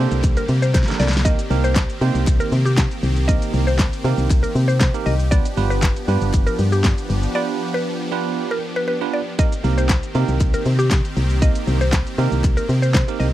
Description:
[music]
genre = dance-pop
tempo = 118 BPM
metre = 4/4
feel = straight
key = unclear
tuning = A4 = 437 Hz
[part]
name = barky tine electric piano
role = accompaniment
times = 0.0-13.3 s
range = Bb3 to C5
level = -25 LUFS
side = right 13 dB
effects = sidechain pumping
[part]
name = supersaw chords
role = sustained chords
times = 0.0-13.3 s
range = D3 to G4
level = -28 LUFS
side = equal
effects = sidechain pumping
[part]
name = solid FM bass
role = bass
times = 0.0-13.3 s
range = G1 to C3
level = -18 LUFS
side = equal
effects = sidechain pumping
[part]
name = pop drum kit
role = drums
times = 0.1-13.3 s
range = handclaps, hi-hat, kick drum, shaker, snare drum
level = -19 LUFS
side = equal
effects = none
[part]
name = group handclap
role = percussion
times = 0.2-13.1 s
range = none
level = -33 LUFS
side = left 8 dB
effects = none
[part]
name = mallet-like synth pluck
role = melody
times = 0.4-13.3 s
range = G4 to Eb5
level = -26 LUFS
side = left 1 dB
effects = chorus
[sound]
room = little or no reverb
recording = dry, close 1970s-style studio recording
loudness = -16 LUFS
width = side -14 dB against mid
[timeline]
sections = 0.0-9.4 A section; 9.4-13.3 A section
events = drop 0.0-9.4, 9.4-13.3; drum fill 0.7-1.3; break 7.4-9.4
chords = 0.0 Gmadd9/C; 1.3 Cm7; 5.3 G7; 9.4 Cm7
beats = 0.23 0.74 | 1.25 1.76 2.27 2.78 | 3.29 3.79 4.30 4.81 | 5.32 5.83 6.34 6.84 | 7.35 7.86 8.37 8.88 | 9.39 9.89 10.40 10.91 | 11.42 11.93 12.44 12.95

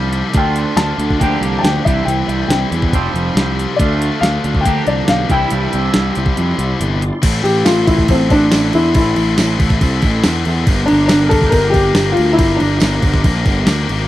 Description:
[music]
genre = indie rock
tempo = 140 BPM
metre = 4/4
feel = straight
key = G dorian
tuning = A4 = 441 Hz
[part]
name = dark upright piano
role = melody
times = 0.0-13.4 s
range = C4 to A5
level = -17 LUFS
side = left 2 dB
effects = tape echo
[part]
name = scooped high-gain guitar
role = riff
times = 0.0-14.1 s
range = G2 to Bb4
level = -22 LUFS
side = left 8 dB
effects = distortion
[part]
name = twangy electric guitar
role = riff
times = 0.0-7.0 s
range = C3 to G4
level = -22 LUFS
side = right 7 dB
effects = lush chorus
[part]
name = fuzz picked electric bass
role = bass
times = 0.0-14.1 s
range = F1 to F2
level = -17 LUFS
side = equal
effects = overdrive
[part]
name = crisp 8-bit digital drum machine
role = drums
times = 0.1-14.0 s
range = crash cymbal, hi-hat, kick drum, snare drum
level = -17 LUFS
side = equal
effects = none
[part]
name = bright tonewheel organ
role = sustained chords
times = 0.4-14.1 s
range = E4 to D6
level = -30 LUFS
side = equal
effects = slow rotary speaker, chorus vibrato
[part]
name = glockenspiel with hard plastic mallets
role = second line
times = 7.4-13.4 s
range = A5 to G6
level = -31 LUFS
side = right 4 dB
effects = none
[part]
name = tambourine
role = percussion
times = 7.7-13.8 s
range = none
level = -29 LUFS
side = right 14 dB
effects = none
[sound]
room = little or no reverb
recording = dry, close 1970s-style studio recording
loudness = -12 LUFS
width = side -14 dB against mid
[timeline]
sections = 0.0-7.2 A section; 7.2-14.1 B section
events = kick and snare drop out 6.4-7.2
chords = 0.3 Dm; 1.2 Gm7; 1.9 Cadd9; 2.9 Fsus2; 3.8 Dm; 4.7 Gm7; 5.3 Cadd9; 7.2 Am; 10.7 Gm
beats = | 0.35 0.78 1.21 1.64 | 2.07 2.50 2.93 3.36 | 3.79 4.22 4.65 5.08 | 5.51 5.94 6.38 6.80 | 7.24 7.67 8.10 8.52 | 8.95 9.38 9.81 10.24 | 10.67 11.10 11.53 11.96 | 12.38 12.81 13.24 13.67

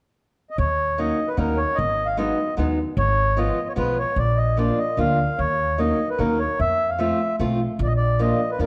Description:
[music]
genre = musette waltz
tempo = 150 BPM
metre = 3/4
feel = straight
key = Eb minor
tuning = A4 = 439 Hz
[part]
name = mellow accordion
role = melody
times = 0.5-8.7 s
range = Bb4 to F5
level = -25 LUFS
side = equal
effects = none
[part]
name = upright bass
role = bass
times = 0.6-8.7 s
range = Ab1 to F2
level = -26 LUFS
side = equal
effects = none
[part]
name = fingerpicked old ladder-braced acoustic guitar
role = accompaniment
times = 1.0-8.7 s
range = F3 to F4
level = -27 LUFS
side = equal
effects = none
[sound]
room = wet recital hall reverb, RT60 1.5 s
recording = dark, warm production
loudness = -22 LUFS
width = mono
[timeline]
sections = 0.6-8.7 A section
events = none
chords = 0.0 N.C.; 0.6 Ebm7; 1.8 Abm7; 3.0 Fdim/Ab; 4.2 Bb; 5.4 Ebm7; 6.6 F; 7.8 Bb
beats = 0.17 | 0.57 0.98 1.38 | 1.78 2.18 2.58 | 2.97 3.37 3.77 | 4.17 4.57 4.98 | 5.38 5.79 6.19 | 6.59 6.99 7.39 | 7.79 8.19 8.59

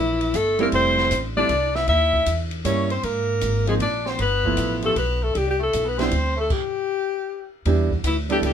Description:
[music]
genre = jazz, small-group swing and bop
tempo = 156 BPM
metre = 3/4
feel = swing 66% on 8ths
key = C major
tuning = A4 = 439 Hz
[part]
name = bright alto saxophone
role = melody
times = 0.0-8.5 s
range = E4 to Fb5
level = -22 LUFS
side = left 3 dB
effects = none
[part]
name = clear tenor saxophone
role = second line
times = 0.0-8.5 s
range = E3 to E4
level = -29 LUFS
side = right 3 dB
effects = none
[part]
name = upright bass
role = bass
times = 0.0-8.5 s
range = F1 to Ab2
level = -24 LUFS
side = equal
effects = none
[part]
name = open jazz drum kit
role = drums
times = 0.2-8.5 s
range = crash cymbal, hi-hat, kick drum, ride cymbal, snare drum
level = -31 LUFS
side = left 1 dB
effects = none
[part]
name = warm upright piano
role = accompaniment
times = 0.6-8.5 s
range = F3 to A4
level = -25 LUFS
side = right 4 dB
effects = none
[sound]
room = light reverb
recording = minimal, uncompressed stereo recording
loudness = -19 LUFS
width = side -8 dB against mid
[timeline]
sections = 0.0-7.7 A section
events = stop 6.5-7.7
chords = 0.0 C13; 0.7 Fmaj9; 1.9 Eb7b9; 3.0 Abadd9; 4.2 G13; 5.3 Cmaj7sus2; 7.7 Em7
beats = 0.34 | 0.73 1.11 1.50 | 1.88 2.27 2.65 | 3.04 3.42 3.81 | 4.19 4.58 4.96 | 5.35 5.73 6.12 | 6.50 6.89 7.27 | 7.66 8.04 8.42

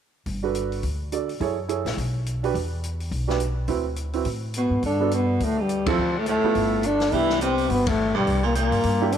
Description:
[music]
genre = jazz, small-group swing and bop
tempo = 210 BPM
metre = 4/4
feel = swing 60% on 8ths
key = G major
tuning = A4 = 440 Hz
[part]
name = upright bass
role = bass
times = 0.3-9.2 s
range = G1 to A2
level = -28 LUFS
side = equal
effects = none
[part]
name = open jazz drum kit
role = drums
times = 0.3-9.2 s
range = hi-hat, kick drum, ride cymbal, snare drum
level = -33 LUFS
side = left 4 dB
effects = none
[part]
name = warm upright piano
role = accompaniment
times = 0.4-9.1 s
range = Bb3 to D5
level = -28 LUFS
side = right 10 dB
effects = none
[part]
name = breathy trombone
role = melody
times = 4.6-9.2 s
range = F3 to E4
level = -22 LUFS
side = left 3 dB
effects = none
[part]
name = warm baritone saxophone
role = second line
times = 4.6-9.2 s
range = F2 to E3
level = -28 LUFS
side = right 9 dB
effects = none
[sound]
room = light reverb, studio reverb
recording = 1960s-style stereo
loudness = -21 LUFS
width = side -8 dB against mid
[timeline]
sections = 0.3-4.8 A section; 4.8-9.2 B section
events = band accent 5.8, 7.8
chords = 0.3 Gmaj9; 1.4 F#m9; 2.0 B5; 2.5 E5; 3.7 D13; 4.8 G; 6.0 Dmadd9; 6.5 G13; 7.1 Cmaj9; 8.3 C7(no3)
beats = | 0.26 0.54 0.83 1.12 | 1.40 1.69 1.98 2.26 | 2.55 2.83 3.12 3.41 | 3.69 3.98 4.26 4.55 | 4.84 5.12 5.41 5.69 | 5.98 6.26 6.55 6.83 | 7.12 7.41 7.69 7.98 | 8.26 8.55 8.83 9.12

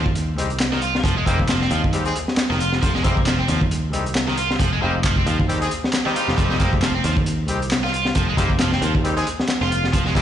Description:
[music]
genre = breakbeat, breaks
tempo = 135 BPM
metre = 4/4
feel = swing 57% on 16ths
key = F minor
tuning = A4 = 440 Hz
[part]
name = high-gain distorted guitar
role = riff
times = 0.0-10.2 s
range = Eb3 to F4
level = -24 LUFS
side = right 2 dB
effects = distortion, vintage 12-bit sampler grit, ping-pong delay
[part]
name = picked electric bass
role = bass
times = 0.0-10.2 s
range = F1 to Eb2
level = -23 LUFS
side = equal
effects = none
[part]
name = crunchy breakbeat drum kit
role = drums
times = 0.1-10.2 s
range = hi-hat, kick drum, snare drum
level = -21 LUFS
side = equal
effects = none
[part]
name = bright horn section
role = stabs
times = 0.4-10.2 s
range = G3 to Ab4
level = -27 LUFS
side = left 2 dB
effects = vintage 12-bit sampler grit, ping-pong delay
[part]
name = electronic handclaps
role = drums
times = 0.6-9.6 s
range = none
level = -28 LUFS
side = equal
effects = none
[sound]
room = light reverb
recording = played on a big sound system in a bare room, large studio reverb, nothing above 10.9 kHz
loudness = -18 LUFS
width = side -10 dB against mid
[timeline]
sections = 0.0-10.2 A section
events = none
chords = 0.0 Fm7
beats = 0.15 0.60 | 1.04 1.49 1.93 2.38 | 2.82 3.27 3.71 4.15 | 4.60 5.04 5.49 5.93 | 6.38 6.82 7.26 7.71 | 8.15 8.60 9.04 9.49 | 9.93

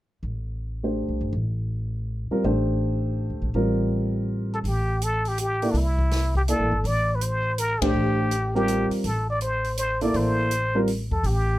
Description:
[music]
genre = modal jazz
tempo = 164 BPM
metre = 3/4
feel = swing 64% on 8ths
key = A phrygian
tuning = A4 = 440 Hz
[part]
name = upright bass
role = bass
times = 0.2-11.6 s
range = G1 to E2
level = -26 LUFS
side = equal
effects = none
[part]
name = dark upright piano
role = accompaniment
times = 0.8-10.9 s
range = G3 to D5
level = -25 LUFS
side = equal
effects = none
[part]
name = trumpet with plunger mute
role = melody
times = 4.5-11.6 s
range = D4 to D5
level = -26 LUFS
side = equal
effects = none
[part]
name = open jazz drum kit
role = drums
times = 4.6-11.4 s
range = hi-hat, kick drum, ride cymbal, snare drum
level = -32 LUFS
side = left 1 dB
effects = none
[sound]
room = little or no reverb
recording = close, detailed microphones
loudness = -22 LUFS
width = side -16 dB against mid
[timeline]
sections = 0.2-4.6 A section; 4.6-11.6 B section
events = band accent 7.8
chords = 0.2 Am7; 2.4 Gm/A; 4.6 Am7; 6.8 Gm/A; 9.0 Am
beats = | 0.23 0.60 0.97 | 1.34 1.71 2.08 | 2.44 2.81 3.18 | 3.54 3.91 4.28 | 4.65 5.01 5.38 | 5.75 6.11 6.48 | 6.85 7.21 7.58 | 7.95 8.31 8.68 | 9.04 9.41 9.78 | 10.14 10.51 10.88 | 11.24

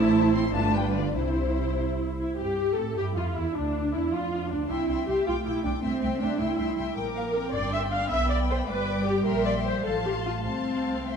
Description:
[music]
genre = quick classical-period movement for string orchestra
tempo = 96-108 BPM (dotted quarters)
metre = 6/8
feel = rubato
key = C major, F major from 7.0 s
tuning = A4 = 441 Hz
[part]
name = warm symphonic violin section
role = melody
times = 0.0-11.2 s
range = D4 to D6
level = -37 LUFS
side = left 7 dB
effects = none
[part]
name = rich studio violin section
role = second line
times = 0.0-11.2 s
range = D4 to A5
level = -34 LUFS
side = left 6 dB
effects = none
[part]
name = warm symphonic viola section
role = accompaniment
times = 0.0-11.2 s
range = C4 to F5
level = -28 LUFS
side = equal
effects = none
[part]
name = dark symphonic cello section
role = bass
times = 0.0-11.2 s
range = C3 to E4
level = -31 LUFS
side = right 4 dB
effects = none
[part]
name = warm studio double bass section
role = bass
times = 0.0-11.2 s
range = G1 to A2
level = -31 LUFS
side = right 2 dB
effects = none
[sound]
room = wet concert hall reverb, RT60 1.7 s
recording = dark, warm production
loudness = -24 LUFS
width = side -6 dB against mid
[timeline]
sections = 0.0-2.4 A section; 2.4-11.2 B section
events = none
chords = 0.0 Am; 0.5 G7; 1.2 C; 2.4 C5/G; 3.0 Em; 3.6 Dmadd9; 4.7 C; 5.3 G; 5.8 C; 7.0 Gm/Bb; 8.1 G/B; 9.3 C7/Bb; 9.8 F/A; 10.5 F/C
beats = 0.55 | 1.16 1.78 | 2.38 2.97 | 3.56 4.13 | 4.70 5.27 | 5.84 6.40 | 6.97 7.54 | 8.11 8.69 | 9.26 9.85 | 10.46 11.07

